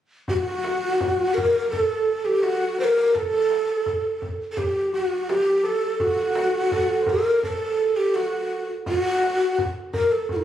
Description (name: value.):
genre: Persian modal ensemble.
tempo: 84 BPM.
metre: 4/4.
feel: straight.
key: unclear.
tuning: A4 = 439 Hz.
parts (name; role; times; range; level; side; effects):
breathy mellow ney; melody; 0.3-10.4 s; E4-49c to C5; -21 LUFS; equal; none.
concert harp; second line; 0.3-10.4 s; F#4 to C5; -27 LUFS; right 2 dB; none.
tombak; percussion; 0.3-10.4 s; none; -33 LUFS; equal; none.
room: light reverb.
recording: recorded on a phone in the room, studio ambience.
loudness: -20 LUFS.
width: side -10 dB against mid.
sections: 0.3-10.4 A section.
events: none.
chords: none.